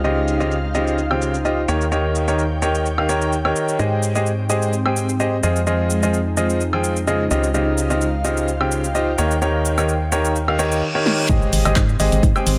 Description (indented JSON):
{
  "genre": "piano house",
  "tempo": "128 BPM",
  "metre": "4/4",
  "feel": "swing 54% on 16ths",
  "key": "unclear",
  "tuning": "A4 = 439 Hz",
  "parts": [
    { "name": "bright baby grand piano", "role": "riff", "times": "0.0-12.6 s", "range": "Db3 to G5", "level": "-22 LUFS", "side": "equal", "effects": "sidechain pumping, delay" },
    { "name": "organ-like FM bass", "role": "bass", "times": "0.0-12.6 s", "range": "Ab1 to Ab2", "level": "-25 LUFS", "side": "equal", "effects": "sidechain pumping" },
    { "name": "punchy analog drum machine", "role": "drums", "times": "0.0-12.6 s", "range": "handclaps, hi-hat, shaker, snare drum, woodblock", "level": "-28 LUFS", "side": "equal", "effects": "overdrive, low-pass filter on hats, small room ambience, low-pass filter on snare, low-pass filter on perc" },
    { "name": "ethereal airy pad", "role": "texture", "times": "0.0-12.6 s", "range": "Ab3 to G5", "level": "-29 LUFS", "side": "equal", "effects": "ensemble chorus, built-in reverb, sidechain pumping" },
    { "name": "reverse cymbal and impact", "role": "sound effects", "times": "10.5-12.6 s", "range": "none", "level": "-28 LUFS", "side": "equal", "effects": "none" },
    { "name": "electronic kick drum", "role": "drums", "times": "11.3-12.3 s", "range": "none", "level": "-20 LUFS", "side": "equal", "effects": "overdrive, small room ambience" }
  ],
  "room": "light reverb, digital ambience",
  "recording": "none",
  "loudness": "-19 LUFS",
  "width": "mono",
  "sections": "0.0-11.3 A section; 11.3-12.6 B section",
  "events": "reverse cymbal 10.5-11.3; drum fill 11.1; drop 11.3-12.6; impact 11.3-12.6",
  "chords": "0.0 Dbmaj9#11; 1.7 Eb7; 3.8 Abmaj7; 5.4 Fm7; 7.3 Dbmaj9#11; 9.2 Eb7; 11.3 Abmaj7"
}